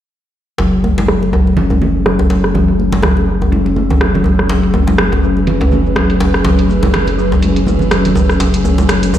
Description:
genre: afro house.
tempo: 123 BPM.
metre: 4/4.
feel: swing 56% on 16ths.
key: F# minor.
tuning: A4 = 440 Hz.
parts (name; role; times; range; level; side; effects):
ethereal airy pad; sustained chords; 1.8-9.2 s; F#3 to B4; -20 LUFS; equal; ensemble chorus, built-in reverb.
buzzing kalimba; arpeggios; 0.6-9.2 s; F#3 to C#4; -15 LUFS; left 1 dB; low-pass filter, digital delay.
round analog bass; bass; 0.6-9.2 s; F#1; -17 LUFS; equal; none.
afro-pop drum kit; drums; 0.6-9.2 s; hi-hat, rim click, shaker; -19 LUFS; equal; overdrive, low-pass filter on hats, low-pass filter on perc, low-pass filter on snare.
congas; percussion; 0.6-9.1 s; none; -20 LUFS; right 2 dB; none.
djembe; percussion; 0.6-9.2 s; none; -18 LUFS; equal; none.
room: light reverb.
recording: played on a big sound system in a bare room, large studio reverb.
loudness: -10 LUFS.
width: side -11 dB against mid.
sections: 0.6-9.2 A section.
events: filter sweep on drum 0.6-9.2; filter sweep on kalimba 0.6-9.2; filter sweep on ambient pad 0.6-9.2.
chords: 0.6 F#m.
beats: | 0.59 1.08 1.57 2.06 | 2.55 3.04 3.52 4.01 | 4.50 4.99 5.47 5.96 | 6.45 6.94 7.42 7.91 | 8.40 8.89.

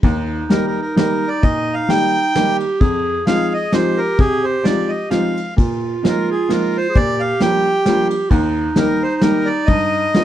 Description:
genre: musette waltz.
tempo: 131 BPM.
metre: 3/4.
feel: swing 55% on 8ths, rubato.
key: Eb major.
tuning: A4 = 440 Hz.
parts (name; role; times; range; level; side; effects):
mellow clarinet; second line; 0.0-10.2 s; Eb4 to Ab4; -21 LUFS; right 2 dB; none.
clear upright piano; accompaniment; 0.0-10.2 s; Eb2 to G4; -20 LUFS; left 1 dB; none.
soft brush drum kit; drums; 0.0-10.2 s; kick drum, ride cymbal, snare drum; -18 LUFS; equal; none.
accordion; melody; 0.5-10.2 s; Ab4 to G5; -20 LUFS; equal; none.
room: moderate small room reverb, RT60 0.5 s.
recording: dark, warm production.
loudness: -14 LUFS.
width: side -11 dB against mid.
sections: 0.0-10.2 A section.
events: none.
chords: 0.0 Eb; 2.8 Fm7; 5.6 Bb7sus4; 7.0 Bb6; 8.3 Eb; 9.7 G7.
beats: | 0.04 0.51 0.98 | 1.44 1.90 2.36 | 2.82 3.27 3.73 | 4.20 4.65 5.12 | 5.58 6.05 6.51 | 6.96 7.41 7.87 | 8.32 8.77 9.23 | 9.69 10.15.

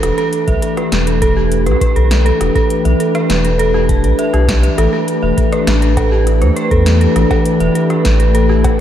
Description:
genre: IDM.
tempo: 101 BPM.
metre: 4/4.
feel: straight.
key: unclear.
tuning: A4 = 439 Hz.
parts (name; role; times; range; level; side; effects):
glassy FM pad; sustained chords; 0.0-8.8 s; E3 to B4; -16 LUFS; left 1 dB; ensemble chorus, built-in reverb.
dark detuned synth bell; arpeggios; 0.0-8.6 s; G4 to A5; -18 LUFS; right 3 dB; chorus, tremolo, diffuse ambient delay.
warm sub bass; bass; 0.0-8.8 s; E1 to E2; -14 LUFS; equal; none.
electro analog drum machine; drums; 0.0-8.8 s; cowbell, hi-hat, rim click, snare drum; -23 LUFS; left 1 dB; diffuse ambient delay.
electronic kick drum; drums; 0.5-8.8 s; none; -17 LUFS; equal; none.
room: moderate plate reverb, RT60 2.6 s.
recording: dreamy mix soaked in reverb.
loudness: -11 LUFS.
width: side -10 dB against mid.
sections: 0.0-8.8 A section.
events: none.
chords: 0.0 Em7; 4.8 A7sus2.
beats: | 0.03 0.62 1.22 1.81 | 2.41 3.00 3.59 4.19 | 4.78 5.38 5.97 6.56 | 7.16 7.75 8.35.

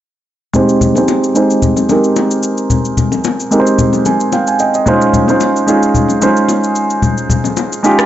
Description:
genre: amapiano.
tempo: 111 BPM.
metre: 4/4.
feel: swing 55% on 16ths.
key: Ab major.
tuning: A4 = 441 Hz.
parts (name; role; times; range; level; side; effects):
warm grand piano; accompaniment; 0.5-8.1 s; Ab3 to Ab5; -11 LUFS; right 1 dB; low-pass filter.
electronic shaker and rim click; drums; 0.5-8.1 s; none; -22 LUFS; left 2 dB; none.
congas and bongos; percussion; 0.5-7.7 s; none; -16 LUFS; left 4 dB; none.
room: light reverb, studio reverb.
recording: dark, warm production, nothing above 7.9 kHz.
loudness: -10 LUFS.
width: side -12 dB against mid.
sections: 0.5-8.1 A section.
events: filter sweep on grand piano 0.5-8.1; grand piano fill 3.8-4.9.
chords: 0.5 Abmaj7; 4.9 Dbmaj9.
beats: | 0.54 1.08 1.62 2.16 | 2.70 3.24 3.78 4.32 | 4.86 5.41 5.95 6.49 | 7.03 7.57.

